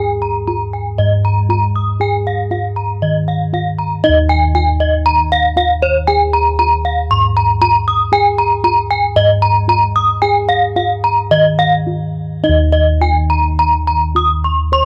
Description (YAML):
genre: Balinese gamelan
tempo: 105-118 BPM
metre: 4/4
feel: straight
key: Eb slendro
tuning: A4 = 440 Hz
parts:
  - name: gamelan-type bronze metallophone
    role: arpeggios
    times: 0.0-14.8 s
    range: Db5-45c to Eb6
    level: -16 LUFS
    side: equal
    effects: none
  - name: gamelan-type bossed gongs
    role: bass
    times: 0.0-14.8 s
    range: Eb2 to Db5-45c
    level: -18 LUFS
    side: equal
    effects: none
room: small room ambience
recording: dry, close 1970s-style studio recording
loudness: -14 LUFS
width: mono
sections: 0.0-12.4 A section; 12.4-14.8 B section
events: break 11.6-12.4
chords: none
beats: 0.48 0.99 1.50 | 2.01 2.52 3.03 3.54 | 4.05 4.56 5.07 5.58 | 6.09 6.60 7.11 7.62 | 8.13 8.64 9.16 9.69 | 10.23 10.77 11.32 11.88 | 12.45 13.02 13.59 14.16 | 14.73